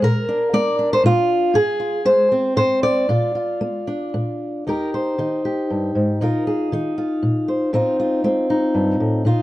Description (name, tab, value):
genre	folk, solo fingerstyle acoustic guitar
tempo	118 BPM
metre	3/4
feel	rubato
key	Eb major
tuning	A4 = 439 Hz
part	fingerpicked steel-string acoustic guitar	solo	0.0-9.4 s	Eb2 to D5	-17 LUFS	equal	none
room	small room ambience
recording	dry, close 1970s-style studio recording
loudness	-17 LUFS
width	side -16 dB against mid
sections	0.0-4.7 A section; 4.7-9.4 B section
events	none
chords	0.0 Bb; 1.5 Fm/Ab; 3.1 Bb; 4.7 Eb; 6.2 Bbsus4; 7.7 F7/A